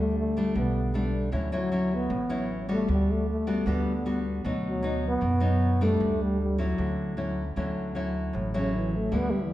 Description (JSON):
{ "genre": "bossa nova", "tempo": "154 BPM", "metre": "4/4", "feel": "straight", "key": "D major", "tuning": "A4 = 438 Hz", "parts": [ { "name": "breathy trombone", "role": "melody", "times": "0.0-9.5 s", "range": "C#3 to B3", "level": "-29 LUFS", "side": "equal", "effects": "none" }, { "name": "nylon-string guitar", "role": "accompaniment", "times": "0.0-9.5 s", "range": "A2 to F#4", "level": "-29 LUFS", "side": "left 1 dB", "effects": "none" }, { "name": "upright bass", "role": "bass", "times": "0.0-9.5 s", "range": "A1 to F#2", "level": "-30 LUFS", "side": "right 1 dB", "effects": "none" } ], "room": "wet recital hall reverb, RT60 1.4 s", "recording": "recorded in a church or concert hall", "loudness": "-25 LUFS", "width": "side -14 dB against mid", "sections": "0.0-7.6 A section; 7.6-9.5 B section", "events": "trombone solo 7.6-9.5", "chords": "0.0 Gadd9; 1.3 Dmaj9; 2.9 Gmaj7/D; 4.4 B/D; 6.0 Em11/D; 6.8 Dmaj9" }